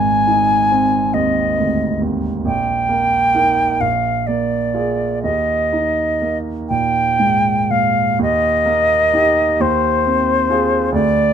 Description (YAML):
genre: classical, romantic duo for flute and grand piano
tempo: 40-46 BPM (dotted quarters)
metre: 6/8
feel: rubato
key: Eb major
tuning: A4 = 441 Hz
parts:
  - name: silver concert flute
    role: melody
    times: 0.0-11.3 s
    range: C5 to Ab5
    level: -16 LUFS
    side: equal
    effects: none
  - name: warm baby grand piano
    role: accompaniment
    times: 0.0-11.3 s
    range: Ab1 to Bb4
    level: -19 LUFS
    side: right 2 dB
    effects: none
room: light reverb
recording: close, detailed microphones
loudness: -14 LUFS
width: side -8 dB against mid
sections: 0.0-8.2 A section; 8.2-11.3 B section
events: none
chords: 0.0 Ab; 2.4 Eb/Bb; 3.8 Bb7; 5.2 Eb; 9.6 Fm7/Eb